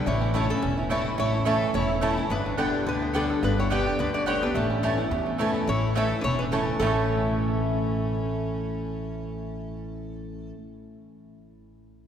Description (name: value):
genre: bluegrass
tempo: 214 BPM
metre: 4/4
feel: swing 54% on 8ths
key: A mixolydian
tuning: A4 = 440 Hz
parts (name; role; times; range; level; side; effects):
- bluegrass banjo; melody; 0.0-10.5 s; A3 to A4; -34 LUFS; right 4 dB; none
- lap resonator guitar; melody; 0.0-10.5 s; A4 to E5; -31 LUFS; left 1 dB; none
- clear fiddle; second line; 0.0-9.8 s; C#4 to A4; -34 LUFS; left 2 dB; none
- picked acoustic archtop guitar; accompaniment; 0.0-10.6 s; E2 to G4; -30 LUFS; left 2 dB; none
- upright bass; bass; 0.0-10.5 s; E1 to E2; -29 LUFS; equal; none
- mandolin; stabs; 0.3-10.6 s; A3 to A5; -31 LUFS; right 2 dB; none
room: wet cathedral reverb, RT60 4.9 s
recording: recorded in a church or concert hall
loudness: -23 LUFS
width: side -8 dB against mid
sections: 0.0-5.7 A section; 5.7-6.8 B section; 6.8-9.0 C section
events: none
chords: 0.1 A; 2.3 G; 4.6 A